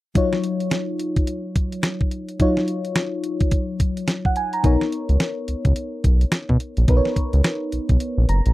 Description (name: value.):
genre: R&B, new jack swing.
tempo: 107 BPM.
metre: 4/4.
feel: swing 60% on 16ths.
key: Eb minor.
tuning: A4 = 440 Hz.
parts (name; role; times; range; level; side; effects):
mellow FM electric piano; accompaniment; 0.1-8.5 s; Gb3 to Bb5; -24 LUFS; left 1 dB; chorus, phaser.
clean 12-bit digital drum machine; drums; 0.2-8.5 s; hi-hat, kick drum, snare drum; -21 LUFS; equal; none.
round analog bass; bass; 4.6-8.5 s; F#1 to B2; -17 LUFS; equal; none.
room: little or no reverb.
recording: dry, close 1970s-style studio recording.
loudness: -19 LUFS.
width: side -17 dB against mid.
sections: 0.2-8.5 A section.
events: kick muted 8.0-8.5; FM electric piano fill 8.0-8.5.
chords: 0.2 Ebm9; 4.6 Bmaj9.